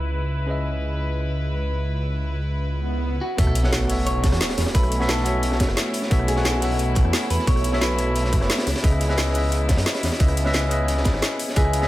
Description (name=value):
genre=liquid drum and bass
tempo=176 BPM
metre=4/4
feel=straight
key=unclear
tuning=A4 = 441 Hz
part: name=bright tine electric piano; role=accompaniment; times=0.0-11.9 s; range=B3 to F#5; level=-27 LUFS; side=left 1 dB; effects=tape echo
part: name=rich chamber string section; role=sustained chords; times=0.0-11.9 s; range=A3 to B4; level=-32 LUFS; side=left 1 dB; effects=none
part: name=swelling detuned saw bass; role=bass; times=0.0-11.9 s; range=F#1 to F#2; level=-23 LUFS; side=equal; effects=none
part: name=swell and sub drop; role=sound effects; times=2.8-4.7 s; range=none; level=-27 LUFS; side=right 1 dB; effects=none
part: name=electric guitar at the edge of break-up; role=melody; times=3.2-8.6, 11.6-11.9 s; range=F#4 to C#5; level=-29 LUFS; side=equal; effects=none
part: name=crunchy breakbeat drum kit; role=drums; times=3.4-11.9 s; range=hi-hat, snare drum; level=-29 LUFS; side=equal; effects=high-pass filter on hats, high-pass filter on snare, high-pass filter on room
part: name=electronic kick drum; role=drums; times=3.4-11.6 s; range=none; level=-20 LUFS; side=equal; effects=none
part: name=garage drum kit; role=drums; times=3.4-11.8 s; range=hi-hat, rim click, snare drum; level=-27 LUFS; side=equal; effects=none
room=small room ambience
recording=low-pass filter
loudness=-19 LUFS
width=side -16 dB against mid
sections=0.0-3.4 A section; 3.4-11.9 B section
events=swell 2.8-3.4; drop 3.4-11.9; impact 3.4-4.7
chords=0.0 C#m9; 3.4 B9sus4; 8.7 C#m9